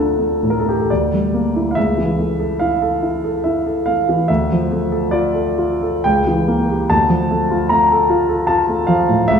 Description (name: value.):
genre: classical, romantic character piece for solo piano.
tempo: 60-76 BPM.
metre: 3/4.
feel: rubato.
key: D minor.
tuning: A4 = 441 Hz.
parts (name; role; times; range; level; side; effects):
clear concert grand piano; solo; 0.0-9.4 s; C#2 to Bb5; -14 LUFS; equal; none.
room: wet recital hall reverb, RT60 1.6 s.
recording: heard from further back in the room.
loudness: -14 LUFS.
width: side -7 dB against mid.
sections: 0.0-9.4 A section.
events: none.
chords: 0.0 Dm; 0.9 Em7b5/D; 1.8 A/C#; 4.3 Dm; 6.0 C#dim7; 6.9 Dm.